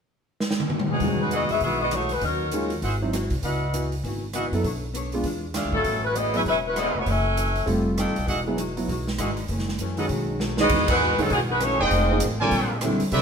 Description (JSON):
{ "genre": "jazz, big band swing", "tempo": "198 BPM", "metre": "4/4", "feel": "swing 60% on 8ths", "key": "E major", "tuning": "A4 = 435 Hz", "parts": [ { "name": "swinging big-band drum kit", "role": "drums", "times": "0.4-13.2 s", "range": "crash cymbal, hi-hat, kick drum, rim click, snare drum, toms", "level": "-30 LUFS", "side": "equal", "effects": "none" }, { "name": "bright saxophone section", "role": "melody", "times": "0.9-2.8, 5.7-7.7, 10.6-12.2 s", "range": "F#3 to E5", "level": "-23 LUFS", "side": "left 1 dB", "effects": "none" }, { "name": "archtop guitar, miked and amplified", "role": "accompaniment", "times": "1.0-13.2 s", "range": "F2 to C#5", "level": "-33 LUFS", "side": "left 3 dB", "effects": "none" }, { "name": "clear concert grand piano", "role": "accompaniment", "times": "1.0-13.2 s", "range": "E2 to A4", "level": "-27 LUFS", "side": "right 1 dB", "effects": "none" }, { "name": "upright bass", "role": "bass", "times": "1.0-13.2 s", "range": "E1 to F#2", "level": "-28 LUFS", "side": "equal", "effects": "none" }, { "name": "warm trumpet section", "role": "stabs", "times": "1.3-13.2 s", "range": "G#4 to Ab5", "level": "-28 LUFS", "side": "right 1 dB", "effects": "none" }, { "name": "warm trombone section", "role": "second line", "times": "10.6-12.2 s", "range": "B2 to D#4", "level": "-30 LUFS", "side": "right 3 dB", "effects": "none" } ], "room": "moderate stone room reverb, RT60 1.2 s", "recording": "band playing live in one room", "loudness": "-22 LUFS", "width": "side -6 dB against mid", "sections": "0.0-1.0 A section; 1.0-10.7 B section; 10.7-13.2 C section", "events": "drum fill 0.4-1.0, 10.4-10.7; band accent 10.9", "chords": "0.0 N.C.; 1.0 Emaj9; 2.2 D#m7; 2.8 G#7b13; 3.4 C#m11; 4.6 Bm9; 5.2 E7b9; 5.9 A69; 7.1 F#m7; 7.7 F9; 8.3 Emaj9; 9.5 F#m7; 10.1 B7; 10.7 Emaj9; 11.9 Fm7; 12.5 A#9" }